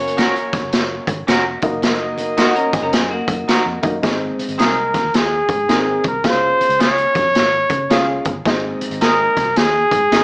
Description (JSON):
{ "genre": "uptempo 1960s-style soul", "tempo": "109 BPM", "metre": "4/4", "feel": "swing 64% on 8ths", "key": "Ab major from 4.0 s", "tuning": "A4 = 437 Hz", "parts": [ { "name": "mellow horn section", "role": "second line", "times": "0.0-3.8 s", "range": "A#3 to D#5", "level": "-23 LUFS", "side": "equal", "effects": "none" }, { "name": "dark upright piano", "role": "accompaniment", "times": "0.0-10.2 s", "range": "Ab2 to F5", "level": "-22 LUFS", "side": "equal", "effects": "none" }, { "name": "vintage muted fingered electric bass", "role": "bass", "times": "0.0-10.2 s", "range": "E#1 to Db3", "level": "-31 LUFS", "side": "equal", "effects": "none" }, { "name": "raw garage drum kit", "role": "drums", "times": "0.1-10.2 s", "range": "hi-hat, kick drum, snare drum", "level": "-19 LUFS", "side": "equal", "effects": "none" }, { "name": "twangy electric guitar", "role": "stabs", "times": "0.2-10.2 s", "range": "C4 to A#4", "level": "-21 LUFS", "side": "right 1 dB", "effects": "spring reverb" }, { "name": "congas", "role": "percussion", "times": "0.2-10.2 s", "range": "none", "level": "-32 LUFS", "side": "equal", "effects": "none" }, { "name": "semi-hollow electric guitar", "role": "riff", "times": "2.4-3.9 s", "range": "A#3 to A#4", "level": "-22 LUFS", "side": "left 1 dB", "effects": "none" }, { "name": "warm trumpet", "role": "melody", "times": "4.6-10.2 s", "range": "Ab4 to Db5", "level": "-15 LUFS", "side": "equal", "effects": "none" } ], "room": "moderate large studio reverb, RT60 1.1 s, small room ambience", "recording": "small speaker sound", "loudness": "-14 LUFS", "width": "side -29 dB against mid", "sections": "0.0-4.0 A section; 4.0-10.2 B section", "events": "none", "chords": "0.0 F#; 1.5 D#m/F#; 4.0 Ab; 6.2 Db; 8.5 Ab" }